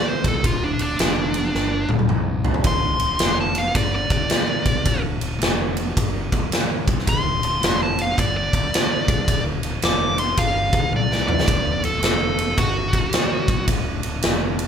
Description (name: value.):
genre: blues rock power trio and southern rock.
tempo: 109 BPM.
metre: 4/4.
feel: swing 64% on 8ths.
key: unclear.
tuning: A4 = 438 Hz.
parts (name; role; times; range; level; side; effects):
dark smooth lead guitar; melody; 0.0-13.7 s; D4 to D6; -23 LUFS; equal; overdrive.
fuzz fingered electric bass; bass; 0.2-14.7 s; D1 to C2; -27 LUFS; equal; overdrive.
big rock drum kit; drums; 0.2-14.7 s; kick drum, ride cymbal, snare drum, toms; -20 LUFS; equal; none.
room: light reverb.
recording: band playing live in one room.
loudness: -18 LUFS.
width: side -8 dB against mid.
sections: 0.0-14.7 A section.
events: lead electric guitar solo 0.0-14.7; drum fill 1.5-2.6, 10.9-11.5.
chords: 0.0 Dm7.